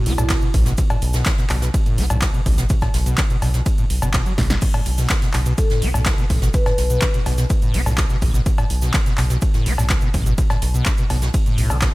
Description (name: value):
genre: acid house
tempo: 125 BPM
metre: 4/4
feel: straight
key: B minor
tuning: A4 = 440 Hz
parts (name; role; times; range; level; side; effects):
- acid bass, saw; riff; 0.0-11.9 s; B1 to D4; -24 LUFS; equal; overdrive, ensemble chorus, sidechain pumping, analog delay
- vibraphone with soft mallets; melody; 0.1-0.4, 5.6-7.0 s; E4 to B4; -27 LUFS; left 1 dB; analog delay
- round analog bass; bass; 0.1-11.9 s; F#1 to B1; -20 LUFS; equal; tube saturation, sidechain pumping
- electro analog drum machine; drums; 0.1-11.9 s; cowbell, crash cymbal, handclaps, hi-hat, ride cymbal, snare drum; -26 LUFS; equal; small room ambience
- shaker and snare drum; drums; 0.1-11.9 s; none; -34 LUFS; right 1 dB; high-pass filter on snare, small room ambience, sidechain pumping on perc, high-pass filter on perc, high-pass filter on room
- tube shaker; percussion; 0.2-11.9 s; none; -36 LUFS; right 4 dB; none
- electronic kick drum; drums; 0.3-11.9 s; none; -19 LUFS; equal; overdrive, small room ambience
room: small room ambience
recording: none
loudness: -16 LUFS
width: side -20 dB against mid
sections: 0.0-4.6 A section; 4.6-11.9 A section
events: drop 0.0-4.6, 4.6-11.9; drum fill 4.4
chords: 0.0 B7(no3)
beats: 0.30 | 0.78 1.26 1.74 2.22 | 2.70 3.18 3.66 4.14 | 4.62 5.10 5.58 6.06 | 6.54 7.02 7.50 7.98 | 8.46 8.94 9.42 9.90 | 10.38 10.86 11.34 11.82